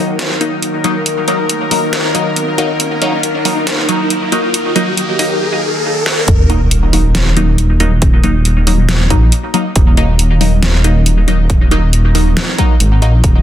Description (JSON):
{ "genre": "deep dubstep", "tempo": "138 BPM", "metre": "4/4", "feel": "swing 58% on 16ths, half-time", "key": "Eb minor", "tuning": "A4 = 440 Hz", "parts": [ { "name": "bowed-like drone", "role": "sustained chords", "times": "0.0-6.3 s", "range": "Eb3 to Bb4", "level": "-20 LUFS", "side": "left 2 dB", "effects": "built-in reverb" }, { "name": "filtered dub chord stab", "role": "stabs", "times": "0.0-13.1 s", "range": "Gb3 to Eb4", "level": "-17 LUFS", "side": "left 1 dB", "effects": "phaser, dub echo" }, { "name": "riser and sub drop", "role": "sound effects", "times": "1.5-8.0 s", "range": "none", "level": "-19 LUFS", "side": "equal", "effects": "none" }, { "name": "dubstep drum kit", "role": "drums", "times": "0.2-13.3 s", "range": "hi-hat, snare drum", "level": "-18 LUFS", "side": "equal", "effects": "overdrive, high-pass filter on hats, high-pass filter on snare, high-pass filter on room" }, { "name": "dark detuned saw bass", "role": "bass", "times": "6.3-13.4 s", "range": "Eb1 to Bb1", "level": "-11 LUFS", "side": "equal", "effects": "none" }, { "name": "electronic kick drum", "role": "drums", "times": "6.3-13.3 s", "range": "none", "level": "-11 LUFS", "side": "equal", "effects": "overdrive" } ], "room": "light reverb", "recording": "dense, heavily limited modern master", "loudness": "-10 LUFS", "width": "side -11 dB against mid", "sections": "0.0-6.3 A section; 6.3-13.4 B section", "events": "build-up 0.0-6.3; filter sweep on synth drone 0.0-6.3; riser 1.5-6.3; drum fill 6.1; drop 6.3-13.4; impact 6.3-8.0", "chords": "0.0 Ebm", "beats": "0.19 0.63 | 1.06 1.50 1.93 2.37 | 2.80 3.24 3.67 4.11 | 4.54 4.97 5.41 5.84 | 6.28 6.71 7.15 7.58 | 8.02 8.45 8.89 9.32 | 9.76 10.19 10.63 11.06 | 11.50 11.93 12.37 12.80 | 13.24" }